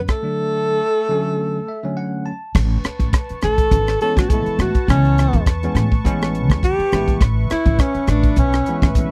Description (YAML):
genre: electric jazz fusion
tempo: 103 BPM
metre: 4/4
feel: swing 55% on 16ths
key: A major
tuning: A4 = 438 Hz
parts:
  - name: upright bass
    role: bass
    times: 0.0-9.1 s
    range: G#1 to A2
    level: -22 LUFS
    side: equal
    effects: none
  - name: warm alto saxophone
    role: melody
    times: 0.1-9.0 s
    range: C#4 to A4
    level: -22 LUFS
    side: equal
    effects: slapback echo
  - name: breathy tenor saxophone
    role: second line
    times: 0.1-1.9 s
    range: A3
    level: -31 LUFS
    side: equal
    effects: none
  - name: tight funk drum kit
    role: drums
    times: 0.1-9.1 s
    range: crash cymbal, hi-hat, kick drum, rim click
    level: -20 LUFS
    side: equal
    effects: none
  - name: bell-like tine electric piano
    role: accompaniment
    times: 0.2-9.1 s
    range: D3 to A5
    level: -26 LUFS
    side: equal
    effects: lush chorus
  - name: warm analog pad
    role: sustained chords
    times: 2.6-9.1 s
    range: B4 to C#6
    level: -33 LUFS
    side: equal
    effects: chorus
room: little or no reverb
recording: dry, close 1970s-style studio recording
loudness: -18 LUFS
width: mono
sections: 0.0-2.6 A section; 2.6-9.1 B section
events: tine electric piano fill 1.4-2.6; alto saxophone solo 2.6-9.1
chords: 0.0 Bm9 (rootless); 2.6 Amaj9